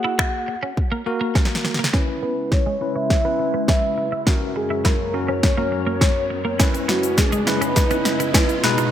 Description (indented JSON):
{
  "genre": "dance-pop",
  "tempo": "103 BPM",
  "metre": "4/4",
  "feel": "straight",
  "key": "C# dorian",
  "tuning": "A4 = 439 Hz",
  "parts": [
    { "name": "soft octave-layered synth lead", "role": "melody", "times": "0.0-8.9 s", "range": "F#4 to F#5", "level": "-25 LUFS", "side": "equal", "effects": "chorus, tremolo, low-pass filter" },
    { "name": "bell-like tine electric piano", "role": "accompaniment", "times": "0.0-8.9 s", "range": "B2 to B4", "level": "-26 LUFS", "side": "left 1 dB", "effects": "medium stereo tremolo, sidechain pumping, low-pass filter" },
    { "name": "twelve-string electric guitar", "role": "riff", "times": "0.0-8.9 s", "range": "G#3 to F#4", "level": "-28 LUFS", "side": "right 3 dB", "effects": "wide subtle chorus, low-pass filter" },
    { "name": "house drum kit", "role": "drums", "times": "0.2-8.9 s", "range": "finger snaps, hi-hat, kick drum, shaker, snare drum", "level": "-19 LUFS", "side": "equal", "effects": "gated reverb" },
    { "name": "glassy FM pad", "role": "sustained chords", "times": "1.9-8.9 s", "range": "F#2 to E5", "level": "-28 LUFS", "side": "left 1 dB", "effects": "ensemble chorus, built-in reverb, sidechain pumping, low-pass filter" },
    { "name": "riser", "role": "sound effects", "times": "4.2-8.9 s", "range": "none", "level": "-30 LUFS", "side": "right 1 dB", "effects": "none" }
  ],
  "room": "moderate plate reverb, RT60 2.4 s",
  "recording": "bright 1980s-style digital production",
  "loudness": "-18 LUFS",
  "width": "side -10 dB against mid",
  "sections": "0.0-1.9 A section; 1.9-8.9 B section",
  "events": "drum fill 1.4-1.9, 1.9-8.9; build-up 1.9-8.9; filter sweep 1.9-8.9; riser 4.2-8.9",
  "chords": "0.0 F#add9; 1.9 C#m7; 4.3 F#; 6.6 C#m7"
}